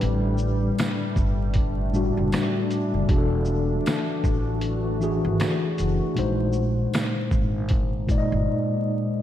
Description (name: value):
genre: lo-fi hip hop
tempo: 78 BPM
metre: 4/4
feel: swing 57% on 16ths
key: unclear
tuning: A4 = 440 Hz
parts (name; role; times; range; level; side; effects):
- mellow tine electric piano; accompaniment; 0.0-9.2 s; A2 to D#5; -25 LUFS; left 1 dB; medium stereo tremolo, cassette tape, low-pass filter
- deep dark ambient pad; sustained chords; 0.0-9.2 s; E3 to F#4; -32 LUFS; left 1 dB; chorus, built-in reverb, low-pass filter
- upright bass; bass; 0.0-8.5 s; E1 to A#1; -26 LUFS; equal; none
- lo-fi sampler-style drum kit; drums; 0.0-8.3 s; finger snaps, hi-hat, kick drum, shaker, snare drum; -25 LUFS; equal; none
- tambourine; percussion; 0.8-7.1 s; none; -46 LUFS; right 5 dB; none
room: moderate lush hall reverb, RT60 1.7 s, studio ambience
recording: dreamy mix soaked in reverb, vinyl crackle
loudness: -21 LUFS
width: side -11 dB against mid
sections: 0.0-9.2 A section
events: silent gap 8.5-9.2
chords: 0.0 A9sus4; 3.1 E9sus4; 6.2 A#9sus4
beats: | 0.01 0.78 1.55 2.32 | 3.09 3.86 4.63 5.40 | 6.17 6.93 7.70 8.47